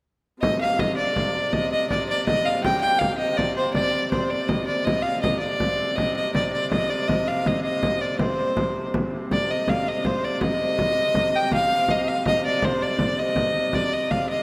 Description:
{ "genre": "medieval dance", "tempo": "108 BPM (dotted quarters)", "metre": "6/8", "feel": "straight", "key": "C minor", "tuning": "A4 = 440 Hz", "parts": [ { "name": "rich fiddle", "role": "melody", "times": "0.4-14.4 s", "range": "C5 to G5", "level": "-25 LUFS", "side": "equal", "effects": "none" }, { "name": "warm hurdy-gurdy", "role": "drone", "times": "0.4-14.4 s", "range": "C3", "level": "-33 LUFS", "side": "equal", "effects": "none" }, { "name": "frame drum", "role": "percussion", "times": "0.4-14.3 s", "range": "none", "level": "-29 LUFS", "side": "equal", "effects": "none" } ], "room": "wet church reverb, RT60 3.4 s", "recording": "none", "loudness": "-23 LUFS", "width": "mono", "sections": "0.4-9.3 A section; 9.3-14.4 B section", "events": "none", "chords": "none" }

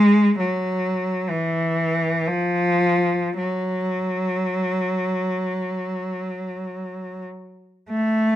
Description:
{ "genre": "classical, free, expressive piece for unaccompanied cello", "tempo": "free time", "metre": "none", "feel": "none", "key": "F# minor", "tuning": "A4 = 440 Hz", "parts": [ { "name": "clear cello", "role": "solo", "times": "0.0-8.4 s", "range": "E3 to A3", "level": "-20 LUFS", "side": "equal", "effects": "none" } ], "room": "light reverb", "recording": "dark, warm production", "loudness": "-21 LUFS", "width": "side -12 dB against mid", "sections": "0.0-7.9 A section", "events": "none", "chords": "none" }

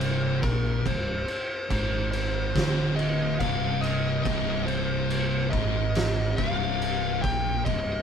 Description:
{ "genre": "stoner and doom metal", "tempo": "71 BPM", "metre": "4/4", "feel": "straight", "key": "C minor", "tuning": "A4 = 445 Hz", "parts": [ { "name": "fuzz lead guitar", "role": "melody", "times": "0.0-8.0 s", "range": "Bb4 to G5", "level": "-30 LUFS", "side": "left 3 dB", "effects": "distortion" }, { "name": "thick fuzz guitar", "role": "riff", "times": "0.0-8.0 s", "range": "C2 to Bb2", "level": "-30 LUFS", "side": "left 8 dB", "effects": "distortion" }, { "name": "thick fuzz guitar", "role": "riff", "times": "0.0-8.0 s", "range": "C2 to Bb2", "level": "-30 LUFS", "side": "right 12 dB", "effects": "distortion" }, { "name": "fuzz fingered electric bass", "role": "bass", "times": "0.0-8.0 s", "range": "C1 to Bb1", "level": "-32 LUFS", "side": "equal", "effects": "overdrive" }, { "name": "oversized low-tuned drum kit", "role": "drums", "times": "0.0-7.9 s", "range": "crash cymbal, kick drum, snare drum", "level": "-30 LUFS", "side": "equal", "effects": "none" } ], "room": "moderate stone room reverb, RT60 1.2 s", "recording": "band playing live in one room", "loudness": "-24 LUFS", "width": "side -7 dB against mid", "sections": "0.0-8.0 A section", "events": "none", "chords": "0.0 Cm" }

